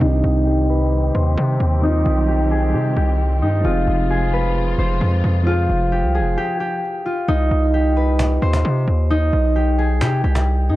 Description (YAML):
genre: hip hop, trap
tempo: 132 BPM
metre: 4/4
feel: half-time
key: C harmonic minor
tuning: A4 = 441 Hz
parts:
  - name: concert harp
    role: melody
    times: 0.0-10.8 s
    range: Eb4 to C5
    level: -21 LUFS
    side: equal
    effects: low-pass filter, digital delay
  - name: dark baby grand piano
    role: accompaniment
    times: 0.0-6.8 s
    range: C3 to C5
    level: -24 LUFS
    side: right 1 dB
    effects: low-pass filter
  - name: warm studio string section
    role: sustained chords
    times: 0.0-6.3 s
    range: C3 to G4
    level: -28 LUFS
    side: equal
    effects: low-pass filter
  - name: distorted 808-style bass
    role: bass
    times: 0.0-10.8 s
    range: F1 to C3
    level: -18 LUFS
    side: equal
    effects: distortion
  - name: cajon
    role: drums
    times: 8.2-10.5 s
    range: none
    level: -25 LUFS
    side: equal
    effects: none
room: studio reverb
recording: dark, warm production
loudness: -16 LUFS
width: side -16 dB against mid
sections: 0.0-7.3 A section; 7.3-10.8 B section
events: filter sweep 0.0-7.3; stop 6.4-7.3; hi-hats muted 7.3-10.8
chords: 0.0 Cm; 3.6 Fm; 7.3 Cm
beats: | 0.01 0.47 0.92 1.38 | 1.83 2.28 2.74 3.19 | 3.65 4.10 4.56 5.01 | 5.47 5.92 6.38 6.83 | 7.28 7.74 8.19 8.65 | 9.10 9.56 10.01 10.47